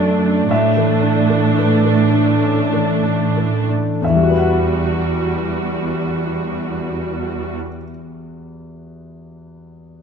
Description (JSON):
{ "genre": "cinematic, emotional film score for orchestra", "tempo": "46-56 BPM", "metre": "3/4", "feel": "rubato", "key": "E minor", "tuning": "A4 = 441 Hz", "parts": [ { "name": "rich studio viola section", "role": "accompaniment", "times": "0.0-7.6 s", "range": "G3 to F#4", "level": "-21 LUFS", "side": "right 5 dB", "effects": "none" }, { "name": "warm concert grand piano", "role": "accompaniment", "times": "0.0-10.0 s", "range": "E2 to F#5", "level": "-21 LUFS", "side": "left 2 dB", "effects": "none" }, { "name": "concert harp", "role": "arpeggios", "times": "0.0-8.0 s", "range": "E2 to F#5", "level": "-23 LUFS", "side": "left 7 dB", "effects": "none" }, { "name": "rich studio cello section", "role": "bass", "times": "0.0-7.6 s", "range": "E2 to A2", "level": "-20 LUFS", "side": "right 5 dB", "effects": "none" } ], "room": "moderate scoring stage reverb, RT60 2.1 s", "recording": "none", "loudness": "-15 LUFS", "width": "side -6 dB against mid", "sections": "0.0-4.0 A section; 4.0-7.9 B section", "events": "slowing down 0.0-4.0", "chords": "0.0 D/F#; 0.5 Asus4; 4.0 Emadd9" }